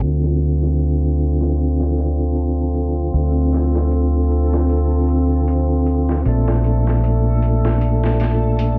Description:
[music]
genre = trip hop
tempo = 77 BPM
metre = 4/4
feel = swing 54% on 16ths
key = D minor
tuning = A4 = 440 Hz
[part]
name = percussive tonewheel organ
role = accompaniment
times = 0.0-8.8 s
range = Bb2 to F4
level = -24 LUFS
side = equal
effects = overdrive, stopped rotary speaker, harmonic tremolo, low-pass filter, tape echo
[part]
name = deep dark ambient pad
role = sustained chords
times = 1.7-8.8 s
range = C4 to D5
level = -29 LUFS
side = equal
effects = none
[part]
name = deep dub fingered electric bass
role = bass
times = 0.0-8.8 s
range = Bb1 to D2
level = -19 LUFS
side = equal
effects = none
[part]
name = trip hop sampler-style drum kit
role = drums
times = 0.0-8.8 s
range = hi-hat, snare drum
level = -30 LUFS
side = equal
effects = overdrive, high-pass filter on hats, high-pass filter on snare, high-pass filter on kick
[part]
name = backwards swelling texture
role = texture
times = 1.7-8.8 s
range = A4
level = -38 LUFS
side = equal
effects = built-in reverb
[sound]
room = light reverb, digital ambience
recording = dark, warm production, vinyl crackle, low-pass filter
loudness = -18 LUFS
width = mono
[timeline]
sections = 0.0-8.8 A section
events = filter sweep on tonewheel organ 0.0-8.8; filter sweep 0.0-8.8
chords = 0.0 Dm7; 6.3 Bbmaj7

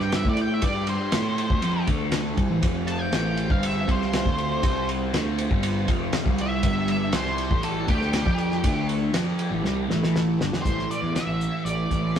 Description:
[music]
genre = psychedelic rock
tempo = 120 BPM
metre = 4/4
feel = straight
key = A minor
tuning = A4 = 441 Hz
[part]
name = octave-fuzz lead guitar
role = melody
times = 0.0-12.2 s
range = G4 to A5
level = -29 LUFS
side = equal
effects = distortion
[part]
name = warm studio string section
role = sustained chords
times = 0.0-10.6 s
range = G3 to F5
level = -35 LUFS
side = left 1 dB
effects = none
[part]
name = fuzz guitar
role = riff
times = 0.0-12.2 s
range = F2 to A4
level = -27 LUFS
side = equal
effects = distortion, phaser
[part]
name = fuzz picked electric bass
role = bass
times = 0.0-12.2 s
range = F1 to A2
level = -28 LUFS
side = equal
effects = overdrive
[part]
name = cloth-damped thuddy drum kit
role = drums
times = 0.0-12.2 s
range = hi-hat, kick drum, ride cymbal, snare drum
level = -26 LUFS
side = equal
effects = none
[sound]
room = moderate stone room reverb, RT60 1.1 s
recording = rough rehearsal-room recording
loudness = -22 LUFS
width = side -8 dB against mid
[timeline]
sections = 0.0-10.6 A section; 10.6-12.2 B section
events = lead electric guitar solo 0.0-10.6; drum fill 9.6-10.6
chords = 0.0 C5; 0.6 G5; 1.1 C5; 1.9 D5; 2.4 C5; 2.6 F5; 4.6 C5; 5.1 F5; 6.6 G5; 8.6 D5; 9.1 G5; 9.9 A5; 10.4 G5; 10.6 A5

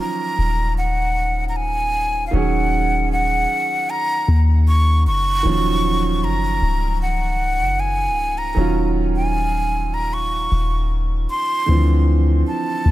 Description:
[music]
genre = contemporary R&B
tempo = 77 BPM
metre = 4/4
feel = straight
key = Eb minor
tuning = A4 = 439 Hz
[part]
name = breathy jazz flute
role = melody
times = 0.0-12.9 s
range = F5 to Db6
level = -21 LUFS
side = equal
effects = ping-pong delay
[part]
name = clear grand piano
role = accompaniment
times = 0.0-12.9 s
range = D3 to Ab4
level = -25 LUFS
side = right 5 dB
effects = none
[part]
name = soft 808-style bass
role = bass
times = 0.4-12.9 s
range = Db1 to Eb2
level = -18 LUFS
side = left 1 dB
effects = none
[sound]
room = small room ambience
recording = none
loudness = -16 LUFS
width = side -15 dB against mid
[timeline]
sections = 0.0-12.9 A section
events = none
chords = 0.0 Ebm9; 11.7 Dm9

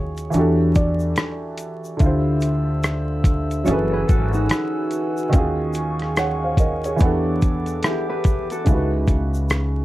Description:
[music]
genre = lo-fi hip hop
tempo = 72 BPM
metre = 4/4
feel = swing 62% on 16ths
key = unclear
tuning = A4 = 441 Hz
[part]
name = felt-muted upright piano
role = melody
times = 0.0-1.1 s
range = C#5 to D5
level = -31 LUFS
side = equal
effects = tape echo, plate reverb
[part]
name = dark upright piano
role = accompaniment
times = 0.0-9.8 s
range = C#3 to F#5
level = -22 LUFS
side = right 1 dB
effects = cassette tape
[part]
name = upright bass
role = bass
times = 0.0-9.8 s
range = F#1 to E2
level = -23 LUFS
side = equal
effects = none
[part]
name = dusty soul sampler-style drum kit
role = drums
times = 0.2-9.7 s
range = hi-hat, kick drum, rim click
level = -19 LUFS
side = equal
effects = none
[part]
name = egg shaker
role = percussion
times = 0.2-9.7 s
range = none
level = -45 LUFS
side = left 4 dB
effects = none
[part]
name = glass harmonica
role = sustained chords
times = 2.0-8.7 s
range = G4 to E6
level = -33 LUFS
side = left 2 dB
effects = stereo widening
[part]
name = mellow electric guitar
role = second line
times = 3.7-8.9 s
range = D#4 to C#5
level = -27 LUFS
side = left 2 dB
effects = tape echo
[sound]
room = light reverb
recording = dark, warm production, vinyl crackle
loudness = -18 LUFS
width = side -16 dB against mid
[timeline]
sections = 0.0-8.7 A section; 8.7-9.8 B section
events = break 0.0-2.0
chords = 0.3 Em11; 2.0 Dm11; 3.7 F#m11; 5.3 D#m11; 7.0 Em11; 8.7 C#m11

